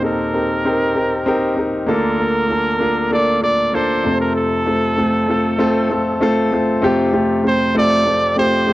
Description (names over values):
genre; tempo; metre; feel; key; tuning
pop; 97 BPM; 4/4; straight; unclear; A4 = 440 Hz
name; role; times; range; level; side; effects
bright trumpet; melody; 0.0-8.7 s; A4 to D5; -19 LUFS; right 1 dB; none
warm concert grand piano; accompaniment; 0.0-8.7 s; D2 to Bb4; -16 LUFS; equal; none
room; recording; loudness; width
light reverb; worn, warbling old tape, cassette tape, warbly pitch drift; -14 LUFS; side -16 dB against mid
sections
0.0-6.8 A section; 6.8-8.7 B section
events
none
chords
0.0 Eb6; 1.9 Bbmaj7/D; 4.1 F; 6.8 Fadd9